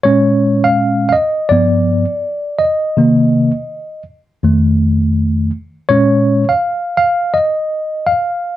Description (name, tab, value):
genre	hip hop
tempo	82 BPM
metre	4/4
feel	swing 65% on 16ths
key	Bb minor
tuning	A4 = 440 Hz
part	mellow tine electric piano	solo	0.0-8.6 s	F2 to F5	-12 LUFS	equal	medium stereo tremolo
room	wet small room reverb, RT60 0.5 s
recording	none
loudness	-12 LUFS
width	side -13 dB against mid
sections	0.1-8.6 A section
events	tine electric piano solo 0.1-8.6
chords	0.1 Bbm7; 1.5 G7; 3.0 Cm7; 4.4 F7; 5.9 Bbm7